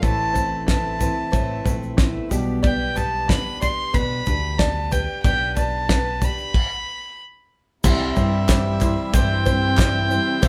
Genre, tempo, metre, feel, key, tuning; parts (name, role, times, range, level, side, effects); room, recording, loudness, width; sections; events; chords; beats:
indie folk with a building arrangement; 92 BPM; 4/4; straight; C major; A4 = 440 Hz
warm fiddle; melody; 0.0-10.5 s; E5 to C6; -27 LUFS; equal
fingerpicked steel-string acoustic guitar; accompaniment; 0.0-5.2 s; E2 to G4; -32 LUFS; equal
picked steel-string acoustic guitar; accompaniment; 0.0-10.5 s; A2 to C5; -32 LUFS; equal
open-back banjo; arpeggios; 0.0-10.5 s; B3 to D5; -34 LUFS; equal
picked electric bass; bass; 0.0-10.5 s; A1 to B2; -29 LUFS; equal
cloth-damped thuddy drum kit; drums; 0.0-10.5 s; crash cymbal, kick drum, snare drum, toms; -23 LUFS; equal
tube shaker; percussion; 0.0-10.5 s; -42 LUFS; equal
clear upright piano; accompaniment; 7.8-10.5 s; C2 to E5; -35 LUFS; equal
warm chamber string section; sustained chords; 7.8-10.5 s; C3 to E4; -36 LUFS; equal
warm duduk; second line; 7.9-10.5 s; G3 to C4; -30 LUFS; equal
group handclap; percussion; 8.5-9.9 s; -35 LUFS; equal
moderate studio reverb, RT60 0.7 s; band playing live in one room; -21 LUFS; mono
0.0-7.8 A section; 7.8-10.5 B section
stop 6.5-7.8
0.0 Amadd9; 2.3 G/B; 7.8 C
| 0.02 0.67 1.33 1.98 | 2.63 3.28 3.94 4.59 | 5.24 5.89 6.54 7.19 | 7.84 8.48 9.13 9.78 | 10.42